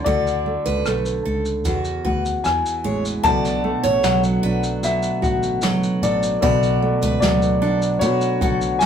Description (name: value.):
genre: acoustic pop.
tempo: 76 BPM.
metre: 4/4.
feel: straight.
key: unclear.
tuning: A4 = 441 Hz.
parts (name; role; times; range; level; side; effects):
dark upright piano; melody; 0.0-8.9 s; C#5 to A5; -22 LUFS; left 4 dB; none.
nylon-string guitar; accompaniment; 0.0-8.9 s; E2 to F#4; -22 LUFS; right 2 dB; none.
picked steel-string acoustic guitar; arpeggios; 0.1-8.6 s; F#4 to D5; -26 LUFS; right 4 dB; none.
fingered electric bass; bass; 0.1-8.9 s; A1 to B2; -26 LUFS; equal; none.
jazz brush drum kit; drums; 0.1-8.9 s; kick drum, rim click, shaker, snare drum; -26 LUFS; equal; none.
felt-muted upright piano; accompaniment; 3.2-8.9 s; A3 to B4; -33 LUFS; left 7 dB; none.
mellow tonewheel organ; sustained chords; 3.2-8.9 s; D3 to B3; -32 LUFS; equal; none.
room: wet studio reverb, RT60 0.6 s.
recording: rough rehearsal-room recording.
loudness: -17 LUFS.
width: side -8 dB against mid.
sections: 0.0-3.2 A section; 3.2-8.9 B section.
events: none.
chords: 0.0 D; 1.7 Eadd9; 3.2 Bm7.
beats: | 0.07 0.86 1.66 2.45 | 3.25 4.04 4.83 5.63 | 6.42 7.22 8.01 8.81.